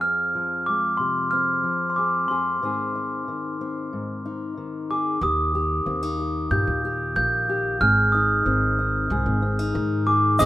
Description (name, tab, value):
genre	indie folk with a building arrangement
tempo	92 BPM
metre	4/4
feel	straight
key	unclear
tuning	A4 = 440 Hz
part	glockenspiel with rubber mallets	melody	0.0-10.5 s	C6 to G6	-23 LUFS	right 1 dB	none
part	fingerpicked steel-string acoustic guitar	accompaniment	0.0-10.5 s	F2 to Ab4	-28 LUFS	left 3 dB	none
part	upright bass	bass	5.2-10.5 s	Ab1 to Ab2	-25 LUFS	right 1 dB	none
part	picked plugged-in twelve-string acoustic guitar	accompaniment	10.4-10.5 s	Ab2 to Ab4	-23 LUFS	left 8 dB	none
part	warm upright piano	arpeggios	10.4-10.5 s	Eb5	-20 LUFS	right 5 dB	none
part	tube shaker	percussion	10.4-10.5 s	none	-33 LUFS	left 5 dB	none
room	light reverb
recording	rough home demo mix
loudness	-21 LUFS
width	side -14 dB against mid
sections	0.0-5.2 A section; 5.2-10.5 B section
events	none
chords	0.0 Fm; 2.6 Ab; 5.2 Eb; 7.8 Ab